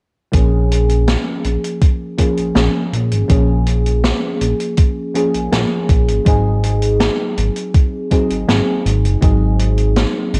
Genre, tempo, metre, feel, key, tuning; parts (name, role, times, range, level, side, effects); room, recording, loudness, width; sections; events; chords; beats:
vaporwave; 81 BPM; 4/4; straight; Bb minor; A4 = 440 Hz
mellow FM electric piano; accompaniment; 0.3-10.4 s; F3 to Ab4; -21 LUFS; equal; lush chorus, analog delay
chorused synth bass; bass; 0.3-10.4 s; Gb1 to Bb1; -18 LUFS; equal
electronic kick drum; drums; 0.3-9.4 s; -15 LUFS; equal; overdrive, vintage 12-bit sampler grit
vintage drum kit; drums; 0.3-10.4 s; hi-hat, snare drum; -23 LUFS; equal; vintage 12-bit sampler grit, gated reverb
light reverb, small room ambience; -16 LUFS; mono
0.3-10.4 A section
0.3 Bbm7; 6.3 Ab7
| 0.34 1.08 1.82 2.56 | 3.30 4.04 4.78 5.52 | 6.26 7.00 7.74 8.48 | 9.22 9.96